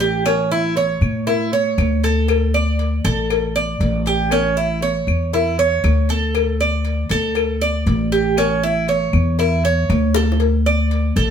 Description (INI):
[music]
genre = latin, Cuban son and guajira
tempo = 118 BPM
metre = 4/4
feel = straight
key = unclear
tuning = A4 = 444 Hz
[part]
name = Cuban tres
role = arpeggios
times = 0.0-11.3 s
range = C#4 to D5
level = -20 LUFS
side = right 4 dB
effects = none
[part]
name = upright bass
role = bass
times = 0.0-11.3 s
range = A1 to A2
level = -18 LUFS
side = equal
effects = none
[part]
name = cowbell and bongos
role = percussion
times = 0.0-11.3 s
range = none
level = -24 LUFS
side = left 13 dB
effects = none
[part]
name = claves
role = percussion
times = 0.3-10.1 s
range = none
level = -30 LUFS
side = left 4 dB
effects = none
[sound]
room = moderate studio reverb, RT60 0.9 s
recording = band playing live in one room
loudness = -16 LUFS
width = side -8 dB against mid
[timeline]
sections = 0.0-10.4 A section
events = drum fill 10.1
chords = 0.3 A; 2.3 D5; 4.3 A; 6.3 D5; 8.4 A; 10.4 D5